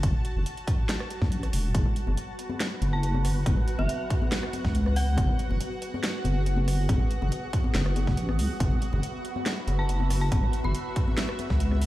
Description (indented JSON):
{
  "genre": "deep dubstep",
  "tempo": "140 BPM",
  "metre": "4/4",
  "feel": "half-time",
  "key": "F# minor",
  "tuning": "A4 = 442 Hz",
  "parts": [
    { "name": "granular cloud pad", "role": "sustained chords", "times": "0.0-11.9 s", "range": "F#4 to A5", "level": "-37 LUFS", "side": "equal", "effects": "built-in reverb" },
    { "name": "deep soft wobble bass", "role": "bass", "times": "0.0-11.9 s", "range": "E1 to C#2", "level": "-25 LUFS", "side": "equal", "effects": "chorus, tube saturation" },
    { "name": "dubstep drum kit", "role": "drums", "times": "0.0-11.9 s", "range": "handclaps, hi-hat, rim click, snare drum", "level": "-34 LUFS", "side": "equal", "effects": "none" },
    { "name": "electronic kick drum", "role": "drums", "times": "0.0-11.6 s", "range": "none", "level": "-27 LUFS", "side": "equal", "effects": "none" },
    { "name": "congas", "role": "percussion", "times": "1.7-11.8 s", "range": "none", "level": "-35 LUFS", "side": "left 4 dB", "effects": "dub echo" },
    { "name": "wind-like tuned noise texture", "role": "texture", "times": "2.2-11.9 s", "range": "B3 to B4", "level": "-38 LUFS", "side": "right 2 dB", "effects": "built-in reverb" },
    { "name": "dark detuned synth bell", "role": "melody", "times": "2.9-5.3, 9.8-11.1 s", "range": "E5 to B5", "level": "-37 LUFS", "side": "right 2 dB", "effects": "chorus, tremolo, dub echo" }
  ],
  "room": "digital ambience",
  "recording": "played on a big sound system in a bare room, large studio reverb",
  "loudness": "-24 LUFS",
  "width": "side -16 dB against mid",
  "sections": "0.0-11.9 A section",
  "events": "none",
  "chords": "0.0 F#m"
}